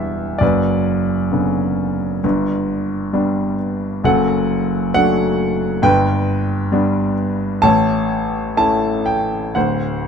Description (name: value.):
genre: classical, lyrical solo piano.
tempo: 60-68 BPM.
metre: 4/4.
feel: rubato.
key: D major.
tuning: A4 = 440 Hz.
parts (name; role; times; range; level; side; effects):
warm grand piano; solo; 0.0-10.1 s; D1 to A5; -15 LUFS; equal; none.
room: light reverb.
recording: dark, warm production.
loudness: -15 LUFS.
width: side -7 dB against mid.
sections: 0.0-10.1 A section.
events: none.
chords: 0.4 Bmadd9/F#; 2.2 G; 4.0 D/F#; 5.8 G; 7.6 A; 9.6 D7.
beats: | 0.42 1.33 2.24 3.15 | 4.04 4.94 5.83 6.72 | 7.64 8.58 9.55.